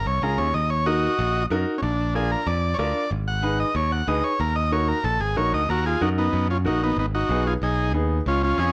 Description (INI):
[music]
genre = latin, cumbia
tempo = 187 BPM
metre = 4/4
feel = straight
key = Eb harmonic minor, Eb minor from 5.7 s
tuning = A4 = 438 Hz
[part]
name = combo organ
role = melody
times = 0.0-8.7 s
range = Cb4 to Gb5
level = -26 LUFS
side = equal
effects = none
[part]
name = modern bright picked electric bass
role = bass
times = 0.0-8.7 s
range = Ab1 to Gb2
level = -27 LUFS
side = equal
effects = none
[part]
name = bright upright piano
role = accompaniment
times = 0.2-8.7 s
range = Cb4 to Cb5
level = -29 LUFS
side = equal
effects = none
[sound]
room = light reverb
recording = dark, warm production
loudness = -23 LUFS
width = mono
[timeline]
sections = 0.0-5.7 A section; 5.7-8.7 B section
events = transistor combo organ solo 0.0-5.7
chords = 0.0 Db; 0.6 Ebm; 1.8 Bb; 3.1 Abm; 4.4 Ebm; 7.0 Abm